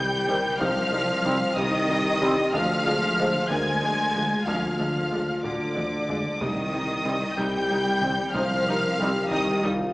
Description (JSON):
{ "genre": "cinematic, hybrid orchestral and electronic film score", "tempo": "62 BPM (dotted quarters)", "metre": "6/8", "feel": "straight", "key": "C minor", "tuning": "A4 = 443 Hz", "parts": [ { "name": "dark symphonic violin section", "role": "melody", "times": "0.0-9.6 s", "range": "D6 to Ab6", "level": "-29 LUFS", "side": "equal", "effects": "none" }, { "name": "warm symphonic violin section", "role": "second line", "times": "0.0-9.6 s", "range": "D5 to Ab5", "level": "-30 LUFS", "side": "left 1 dB", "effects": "none" }, { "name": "warm studio viola section", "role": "accompaniment", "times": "0.0-9.7 s", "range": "G3 to Eb4", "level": "-34 LUFS", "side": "equal", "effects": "none" }, { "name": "dark French horn section", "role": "sustained chords", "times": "0.0-9.9 s", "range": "F4 to C5", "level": "-29 LUFS", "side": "left 1 dB", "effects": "none" }, { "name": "warbly dusty pluck", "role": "arpeggios", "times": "0.0-9.8 s", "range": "C3 to Ab3", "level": "-38 LUFS", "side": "equal", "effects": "none" }, { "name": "round analog bass", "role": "riff", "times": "0.0-9.8 s", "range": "C2 to D3", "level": "-38 LUFS", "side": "equal", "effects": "none" }, { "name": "mellow tuba", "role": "bass", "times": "0.0-9.9 s", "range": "C2 to D2", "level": "-31 LUFS", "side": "equal", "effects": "none" }, { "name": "rich symphonic cello section", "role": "bass", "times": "0.0-9.6 s", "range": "D3 to Ab3", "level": "-31 LUFS", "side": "equal", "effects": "none" }, { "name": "sub bass with octave", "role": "bass", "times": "0.0-9.9 s", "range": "D1 to C2", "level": "-48 LUFS", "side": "equal", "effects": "none" }, { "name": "warm symphonic double bass section", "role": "bass", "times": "0.0-9.9 s", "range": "C2 to D2", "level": "-38 LUFS", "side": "right 1 dB", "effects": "none" }, { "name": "sub drop", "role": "sound effects", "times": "0.0-0.6 s", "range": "none", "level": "barely audible", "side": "none", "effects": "none" }, { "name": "mellow trombone section", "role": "sustained chords", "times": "0.3-9.1 s", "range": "F3 to C4", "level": "-34 LUFS", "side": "right 1 dB", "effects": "none" }, { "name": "taiko ensemble", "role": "drums", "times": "0.3-9.9 s", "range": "none", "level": "-39 LUFS", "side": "equal", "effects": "none" } ], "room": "wet concert hall reverb, RT60 1.9 s", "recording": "small speaker sound", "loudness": "-22 LUFS", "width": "side -20 dB against mid", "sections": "0.0-9.9 A section", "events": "impact 0.0-0.6; drum fill 5.4-6.4", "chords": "0.0 Cm; 2.5 Ddim; 6.4 Cm", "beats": "| 0.60 1.57 | 2.54 3.51 | 4.47 5.44 | 6.41 7.38 | 8.35 9.31" }